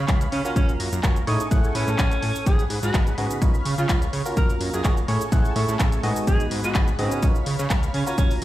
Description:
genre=piano house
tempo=126 BPM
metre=4/4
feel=swing 53% on 16ths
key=unclear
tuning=A4 = 440 Hz
part: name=analog string pad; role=sustained chords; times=0.0-8.4 s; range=G#4 to C#6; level=-34 LUFS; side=right 1 dB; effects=ensemble chorus, sidechain pumping
part: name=fat analog bass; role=bass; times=0.0-8.4 s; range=F#1 to C#3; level=-26 LUFS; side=right 1 dB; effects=sidechain pumping
part: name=electronic kick drum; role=drums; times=0.1-8.3 s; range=none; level=-21 LUFS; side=equal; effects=none
part: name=punchy analog drum machine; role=drums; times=0.1-8.4 s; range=handclaps, hi-hat, shaker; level=-31 LUFS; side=equal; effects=none
part: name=breathy alto saxophone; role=melody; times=0.3-8.3 s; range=C#4 to A#4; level=-30 LUFS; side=equal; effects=tape echo
part: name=barking FM electric piano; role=riff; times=0.4-8.4 s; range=G#2 to F#5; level=-28 LUFS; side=equal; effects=chorus, sidechain pumping, tape echo
room=light reverb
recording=played on a big sound system in a bare room, large studio reverb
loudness=-20 LUFS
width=side -15 dB against mid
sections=0.0-8.4 A section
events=none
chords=0.0 C#13; 0.6 F#maj7; 1.3 Amaj7; 2.5 G#m7; 3.4 C#13; 4.4 F#maj7; 5.1 Amaj7; 6.3 G#m7; 7.2 C#13

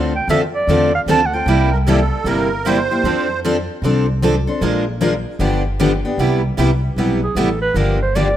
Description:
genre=acoustic string swing (jazz manouche)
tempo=153 BPM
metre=4/4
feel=swing 64% on 8ths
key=unclear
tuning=A4 = 440 Hz
part: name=picked steel-string acoustic guitar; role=accompaniment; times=0.0-8.3 s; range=C3 to Bb4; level=-19 LUFS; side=left 3 dB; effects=none
part: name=picked steel-string acoustic guitar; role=accompaniment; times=0.0-8.3 s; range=C3 to Bb4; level=-22 LUFS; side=right 7 dB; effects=none
part: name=upright bass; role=bass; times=0.0-8.4 s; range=G1 to F2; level=-20 LUFS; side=equal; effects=none
part: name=mellow clarinet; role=melody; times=0.2-1.7, 7.2-8.4 s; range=Ab4 to A5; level=-19 LUFS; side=right 3 dB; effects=none
part: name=musette accordion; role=second line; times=1.7-3.4 s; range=A4 to C5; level=-21 LUFS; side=right 4 dB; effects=none
room=light reverb, studio ambience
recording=rough home demo mix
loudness=-14 LUFS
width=side -11 dB against mid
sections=0.0-6.2 A section; 6.2-8.4 B section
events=clarinet solo 6.2-8.4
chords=0.0 Dm7; 1.5 C7; 3.0 F6; 4.6 Bb7; 5.4 G7; 6.2 Cmaj7; 7.8 Gm7

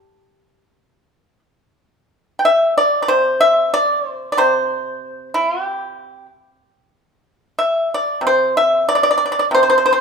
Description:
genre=chinese traditional, Chinese solo plucked strings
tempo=93 BPM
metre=4/4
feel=uneven beats, rubato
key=unclear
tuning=A4 = 440 Hz
part: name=pipa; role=solo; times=0.0-10.0 s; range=C3 to G5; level=-14 LUFS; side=equal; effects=none
room=moderate recital hall reverb, RT60 1.4 s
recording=minimal, uncompressed stereo recording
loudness=-14 LUFS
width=side -5 dB against mid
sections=0.0-1.8 A section; 1.8-10.0 B section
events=none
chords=none

